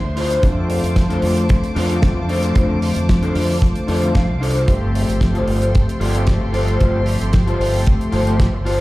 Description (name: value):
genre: nu-disco, nu disco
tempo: 113 BPM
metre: 4/4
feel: straight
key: unclear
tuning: A4 = 439 Hz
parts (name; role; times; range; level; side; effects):
- bright studio string section; sustained chords; 0.0-8.8 s; A4 to D6; -30 LUFS; equal; vintage 12-bit sampler grit, sidechain pumping
- electric guitar at the edge of break-up; riff; 0.0-8.8 s; D4 to A5; -23 LUFS; left 1 dB; ensemble chorus, vintage 12-bit sampler grit
- fingered electric bass with an envelope filter; bass; 0.0-8.8 s; G1 to F2; -20 LUFS; equal; tube saturation
- damped 70s drum kit; drums; 0.2-8.8 s; hi-hat, snare drum; -26 LUFS; equal; none
- mellow synth brass; accompaniment; 0.4-8.5 s; D3 to G4; -23 LUFS; left 1 dB; chorus, cassette tape
- kick drum; drums; 0.4-8.5 s; none; -15 LUFS; equal; none
room: studio reverb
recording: played on a big sound system in a bare room, large studio reverb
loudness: -15 LUFS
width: side -18 dB against mid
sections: 0.0-8.8 A section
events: clean electric guitar fill 3.6-4.7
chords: 0.4 F6; 4.7 G9sus4